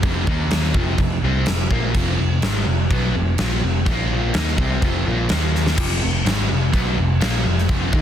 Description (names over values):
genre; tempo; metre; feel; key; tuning
hard rock; 125 BPM; 4/4; straight; unclear; A4 = 439 Hz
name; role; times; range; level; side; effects
sludgy distorted guitar; riff; 0.0-8.0 s; F2 to Eb4; -23 LUFS; left 1 dB; overdrive
picked electric bass; bass; 0.0-8.0 s; F1 to Eb2; -22 LUFS; equal; none
huge arena drum kit; drums; 0.0-8.0 s; crash cymbal, kick drum, snare drum; -21 LUFS; equal; none
room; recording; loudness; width
studio reverb; dense, heavily limited modern master; -17 LUFS; side -10 dB against mid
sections
0.0-5.8 A section; 5.8-8.0 A section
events
drum fill 5.5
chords
0.3 Eb5; 0.7 F5; 3.9 Bb5; 4.3 F5; 5.3 Eb5; 5.8 F5